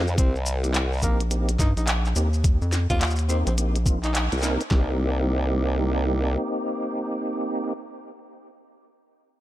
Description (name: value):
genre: glitch hop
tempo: 106 BPM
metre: 4/4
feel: swing 62% on 16ths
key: C minor pentatonic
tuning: A4 = 440 Hz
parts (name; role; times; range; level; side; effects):
- tonewheel organ; stabs; 0.0-7.7 s; Bb3 to Bb4; -29 LUFS; right 1 dB; overdrive, chorus vibrato, slow rotary speaker, sidechain pumping, digital delay
- formant-sweep wobble bass; bass; 0.0-6.4 s; C2 to F2; -23 LUFS; equal; chorus, overdrive
- glitchy drum kit; drums; 0.1-4.7 s; handclaps, hi-hat, shaker, snare drum; -29 LUFS; equal; none
- growling tenor saxophone; melody; 0.2-4.3 s; Bb3 to F4; -33 LUFS; equal; digital delay
- boom bap sampler-style drum kit; drums; 0.2-4.9 s; handclaps, kick drum, snare drum; -21 LUFS; equal; overdrive
- rubbery square bass; bass; 1.0-4.3 s; Bb1 to G2; -23 LUFS; equal; none
room: digital ambience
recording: none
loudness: -21 LUFS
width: side -14 dB against mid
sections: 0.0-4.7 A section; 4.7-7.0 B section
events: drop 0.0-4.7; band accent 4.1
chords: 0.0 Cm7